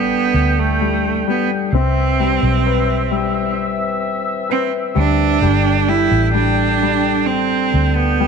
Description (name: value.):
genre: pop.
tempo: 65 BPM.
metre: 4/4.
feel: straight.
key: G major.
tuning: A4 = 440 Hz.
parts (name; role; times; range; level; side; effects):
clear cello; melody; 0.0-8.3 s; A3 to E4; -18 LUFS; right 10 dB; none.
clear baby grand piano; accompaniment; 0.0-8.3 s; G3 to B4; -21 LUFS; left 13 dB; none.
mellow woodwind section; sustained chords; 0.0-8.3 s; C4 to G5; -22 LUFS; left 1 dB; none.
vintage muted fingered electric bass; bass; 0.0-8.3 s; G1 to D2; -18 LUFS; equal; none.
impact; sound effects; 0.0-1.7 s; none; -47 LUFS; equal; none.
room: moderate echo chamber reverb, RT60 2.0 s, small room ambience.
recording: 1960s-style stereo with parts hard left and right.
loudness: -14 LUFS.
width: side -6 dB against mid.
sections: 0.0-8.3 A section.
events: impact 0.0-1.7.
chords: 0.0 Gsus2; 1.7 Cmaj7; 5.4 Gsus2.